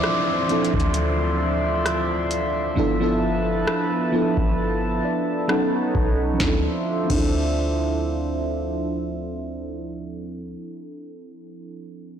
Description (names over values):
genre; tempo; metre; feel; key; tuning
contemporary R&B; 66 BPM; 4/4; swing 54% on 16ths; D minor; A4 = 440 Hz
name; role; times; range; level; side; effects
soft synth bell; melody; 0.0-5.5 s; D6; -30 LUFS; left 2 dB; chorus, low-pass filter, ping-pong delay
FM electric piano with soft pad layer; accompaniment; 0.0-12.2 s; E3 to A5; -25 LUFS; right 1 dB; chorus, low-pass filter
chorused pulse-width pad; sustained chords; 0.0-9.9 s; F3 to C6; -26 LUFS; right 1 dB; low-pass filter
booming analog drum machine; drums; 0.0-7.4 s; crash cymbal, hi-hat, kick drum, rim click, snare drum; -26 LUFS; equal; none
downlifter; sound effects; 0.0-6.4 s; none; -32 LUFS; right 1 dB; none
warm 808-style bass; bass; 0.7-10.6 s; G1 to D2; -27 LUFS; left 1 dB; none
room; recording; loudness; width
moderate lush hall reverb, RT60 2.8 s; blown-out, overdriven recording, overdrive; -20 LUFS; side -8 dB against mid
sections
0.0-6.4 A section; 6.4-10.0 B section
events
filter sweep 0.0-6.4; FM electric piano fill 4.6-6.4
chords
0.0 Dm9; 2.8 G13; 5.5 B9; 6.4 Dm9